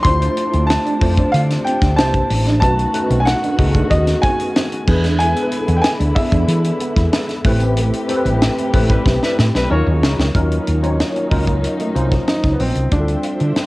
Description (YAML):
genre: polished 1980s jazz-funk pop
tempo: 93 BPM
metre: 4/4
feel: straight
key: unclear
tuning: A4 = 441 Hz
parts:
  - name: clear baby grand piano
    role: melody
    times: 0.0-13.7 s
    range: B3 to C6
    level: -21 LUFS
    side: equal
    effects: cassette tape
  - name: tine electric piano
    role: accompaniment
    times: 0.0-13.7 s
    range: Gb3 to D5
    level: -21 LUFS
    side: left 1 dB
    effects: ensemble chorus, cassette tape
  - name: dark studio string section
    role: sustained chords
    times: 0.0-13.7 s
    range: C3 to G5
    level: -26 LUFS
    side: left 1 dB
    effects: cassette tape
  - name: electric guitar at the edge of break-up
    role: riff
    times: 0.0-13.6 s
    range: G3 to F4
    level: -27 LUFS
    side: right 3 dB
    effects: ensemble chorus, cassette tape
  - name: woody fretless electric bass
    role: bass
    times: 0.0-13.6 s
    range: A1 to E3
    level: -17 LUFS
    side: equal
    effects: wide subtle chorus
  - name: tight funk drum kit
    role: drums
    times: 0.0-13.7 s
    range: crash cymbal, hi-hat, kick drum, snare drum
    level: -19 LUFS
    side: equal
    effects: cassette tape
  - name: clear horn section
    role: second line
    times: 8.9-10.2 s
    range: G3 to Db5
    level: -26 LUFS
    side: left 2 dB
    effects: cassette tape, tape echo
room: light reverb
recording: home recording on cassette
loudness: -14 LUFS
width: side -20 dB against mid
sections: 0.0-10.3 A section; 10.3-12.9 B section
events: band accent 7.8-10.3; drum fill 9.1-10.3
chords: 0.0 Dm7; 2.0 C9; 2.6 B7; 4.9 E7; 7.5 Am9; 9.7 Ebm7; 12.9 Dm11